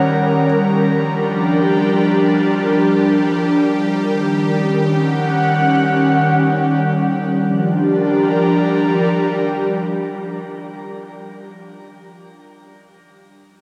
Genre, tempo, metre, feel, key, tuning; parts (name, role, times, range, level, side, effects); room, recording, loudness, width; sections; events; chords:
ambient; free time; A4 = 438 Hz
airy breathy pad; sustained chords; 0.0-11.2 s; Eb3 to Gb5; -18 LUFS; equal; chorus, shimmer reverb
bowed-like drone; drone; 0.0-10.9 s; G3 to G4; -24 LUFS; equal; built-in reverb
wet cathedral reverb, RT60 5.5 s; in a vast, echoing space; -16 LUFS; mono
0.0-7.3 A section; 7.3-10.5 B section
0.0 Ebm7; 0.9 Gm7; 4.0 Ebm7; 7.3 Gm7